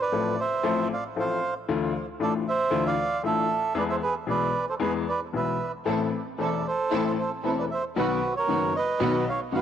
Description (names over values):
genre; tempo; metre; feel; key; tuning
tango; 115 BPM; 4/4; rubato; A harmonic minor; A4 = 441 Hz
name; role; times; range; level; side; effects
bandoneon; melody; 0.0-9.6 s; E4 to F5; -26 LUFS; right 4 dB; cassette tape, tape echo
bright upright piano; accompaniment; 0.1-9.6 s; E1 to A4; -28 LUFS; left 6 dB; cassette tape
rich studio string section; stabs; 5.9-9.6 s; B3 to A4; -33 LUFS; right 9 dB; cassette tape
room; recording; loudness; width
light reverb, studio ambience; home recording on cassette; -24 LUFS; side -9 dB against mid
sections
0.0-9.6 A section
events
none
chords
0.0 F/A; 1.7 Dmadd9; 3.8 E; 5.9 Am; 8.0 B